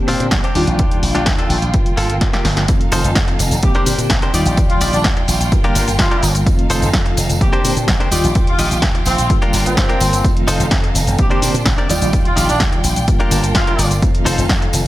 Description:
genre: filtered disco house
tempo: 127 BPM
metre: 4/4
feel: straight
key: F mixolydian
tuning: A4 = 440 Hz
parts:
  - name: reed electric piano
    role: accompaniment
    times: 0.0-14.9 s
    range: D3 to D5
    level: -22 LUFS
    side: equal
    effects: fast tremolo, phaser, vintage 12-bit sampler grit, sidechain pumping, low-pass filter
  - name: rich studio violin section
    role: sustained chords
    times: 0.0-14.9 s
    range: Bb3 to D6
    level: -25 LUFS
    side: equal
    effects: sidechain pumping, low-pass filter
  - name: direct-recorded clean electric guitar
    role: riff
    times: 0.1-14.8 s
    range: Bb3 to A5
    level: -23 LUFS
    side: left 1 dB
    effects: sidechain pumping, low-pass filter
  - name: slap bass with an envelope filter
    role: bass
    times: 0.1-14.8 s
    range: F1 to Bb2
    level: -19 LUFS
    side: equal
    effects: sidechain pumping, low-pass filter
  - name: punchy analog drum machine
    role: drums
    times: 0.1-14.8 s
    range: hi-hat, shaker, snare drum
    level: -20 LUFS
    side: equal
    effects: sidechain pumping on hats, sidechain pumping on perc
  - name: tambourine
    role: percussion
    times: 0.1-14.8 s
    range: none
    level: -28 LUFS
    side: right 4 dB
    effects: sidechain pumping on perc, low-pass filter on perc
  - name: electronic kick drum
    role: drums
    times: 0.3-14.6 s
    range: none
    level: -17 LUFS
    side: equal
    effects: none
  - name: mellow horn section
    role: melody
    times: 3.6-13.9 s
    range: C4 to G4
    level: -23 LUFS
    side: equal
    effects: sidechain pumping, low-pass filter
room: little or no reverb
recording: none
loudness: -13 LUFS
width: side -15 dB against mid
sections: 0.0-2.7 A section; 2.7-14.9 B section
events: drum fill 2.2-2.7; drop 2.7-14.9; clean electric guitar fill 13.1-14.0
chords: 0.0 Bb69; 0.6 Ebmaj9; 1.7 Gm7; 2.7 F7; 3.6 Bb69; 4.3 Ebmaj9; 5.5 Gm7; 6.5 F7; 7.4 Bb69; 8.1 Ebmaj9; 9.3 Gm7; 10.2 F7; 11.2 Bb69; 11.9 Ebmaj9; 13.1 Gm7; 14.0 F7

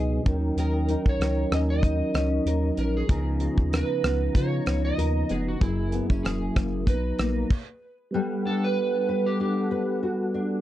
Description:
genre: indie pop, bedroom pop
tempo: 95 BPM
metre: 4/4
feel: swing 55% on 16ths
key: unclear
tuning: A4 = 440 Hz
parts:
  - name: electric slide guitar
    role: melody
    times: 0.0-10.0 s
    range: E4 to D#5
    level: -31 LUFS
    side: right 2 dB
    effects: lush chorus
  - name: nylon-string guitar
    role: accompaniment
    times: 0.0-10.6 s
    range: F#2 to B4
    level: -30 LUFS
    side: left 4 dB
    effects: ensemble chorus, vibrato effect
  - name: percussive tonewheel organ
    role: accompaniment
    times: 0.0-10.6 s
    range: E#3 to A#5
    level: -29 LUFS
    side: right 2 dB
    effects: chorus vibrato, slow rotary speaker, cassette tape
  - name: round analog bass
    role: bass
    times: 0.0-7.4 s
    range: E1 to C#3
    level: -27 LUFS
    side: equal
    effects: none
  - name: damped 70s drum kit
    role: drums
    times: 0.3-7.7 s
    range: crash cymbal, hi-hat, kick drum, rim click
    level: -24 LUFS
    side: equal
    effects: vintage 12-bit sampler grit
room: light reverb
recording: dark, warm production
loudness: -23 LUFS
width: side -13 dB against mid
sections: 0.0-8.1 A section; 8.1-10.6 B section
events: stop 7.5-8.1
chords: 0.3 D#m7; 3.1 C#13; 5.6 F#9; 6.9 Bmaj7; 8.1 Gmaj9

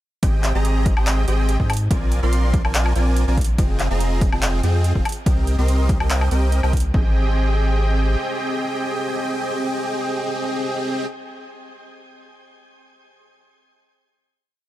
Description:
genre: future bass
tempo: 143 BPM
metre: 4/4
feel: half-time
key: Ab lydian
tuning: A4 = 443 Hz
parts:
  - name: dense compressed supersaw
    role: riff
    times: 0.2-11.1 s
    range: C4 to C6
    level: -24 LUFS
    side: right 1 dB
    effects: sidechain pumping, tape echo
  - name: saturated sub bass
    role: bass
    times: 0.2-8.2 s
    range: F1 to Ab2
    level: -19 LUFS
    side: equal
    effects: sidechain pumping
  - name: big-room dance drum kit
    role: drums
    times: 0.2-6.9 s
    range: handclaps, hi-hat, woodblock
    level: -26 LUFS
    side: left 1 dB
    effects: none
  - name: electronic kick drum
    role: drums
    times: 0.2-7.0 s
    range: none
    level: -20 LUFS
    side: equal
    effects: overdrive
room: little or no reverb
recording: dark, warm production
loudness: -18 LUFS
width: side -14 dB against mid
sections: 0.2-6.9 drop; 6.9-10.3 final chord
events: drop 0.2-6.9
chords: 0.2 Abmaj7; 1.9 Bb9; 3.6 Fm9; 5.1 Cm7; 6.9 Abmaj7

